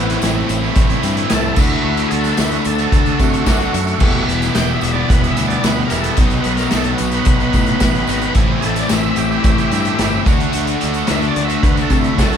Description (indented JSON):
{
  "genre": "classic rock",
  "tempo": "111 BPM",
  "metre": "4/4",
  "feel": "straight",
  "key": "unclear",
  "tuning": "A4 = 440 Hz",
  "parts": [
    { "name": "overdriven tonewheel organ", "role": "melody", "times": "0.0-12.4 s", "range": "A3 to G5", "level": "-22 LUFS", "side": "equal", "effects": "slow rotary speaker" },
    { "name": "distorted electric guitar", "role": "riff", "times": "0.0-12.4 s", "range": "A2 to F#4", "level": "-23 LUFS", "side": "right 8 dB", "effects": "overdrive" },
    { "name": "sludgy distorted guitar", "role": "riff", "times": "0.0-12.4 s", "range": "E2 to G4", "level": "-21 LUFS", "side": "left 8 dB", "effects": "overdrive" },
    { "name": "tight distorted guitar", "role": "riff", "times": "0.0-12.4 s", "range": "A2 to F#4", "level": "-23 LUFS", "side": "right 1 dB", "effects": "distortion" },
    { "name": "growling fingered electric bass", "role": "bass", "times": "0.0-12.4 s", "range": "E1 to C3", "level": "-21 LUFS", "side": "right 1 dB", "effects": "overdrive" },
    { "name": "vintage drum kit", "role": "drums", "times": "0.1-12.4 s", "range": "crash cymbal, hi-hat, kick drum, snare drum", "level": "-18 LUFS", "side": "equal", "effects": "none" },
    { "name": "tambourine", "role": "percussion", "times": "0.2-12.3 s", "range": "none", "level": "-35 LUFS", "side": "left 6 dB", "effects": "none" }
  ],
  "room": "moderate large studio reverb, RT60 1.1 s",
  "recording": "band playing live in one room",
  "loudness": "-13 LUFS",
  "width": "side -8 dB against mid",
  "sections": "0.0-12.4 A section",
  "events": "tonewheel organ solo 0.0-12.4",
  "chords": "0.0 Am; 1.6 Dadd9; 4.0 Em; 6.2 B; 8.4 Am; 10.3 D"
}